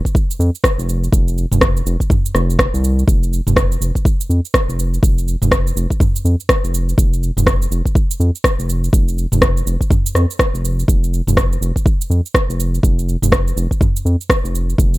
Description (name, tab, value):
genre	afro house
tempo	123 BPM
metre	4/4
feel	swing 60% on 16ths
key	unclear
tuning	A4 = 440 Hz
part	deep house drum kit	drums	0.1-15.0 s	rim click, shaker, toms	-18 LUFS	equal	none
part	electronic kick drum	drums	0.1-14.9 s	none	-15 LUFS	equal	overdrive
part	round analog bass	bass	0.4-15.0 s	F1 to F2	-17 LUFS	equal	sidechain pumping
room	little or no reverb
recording	none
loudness	-14 LUFS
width	side -19 dB against mid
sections	0.0-15.0 A section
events	none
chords	none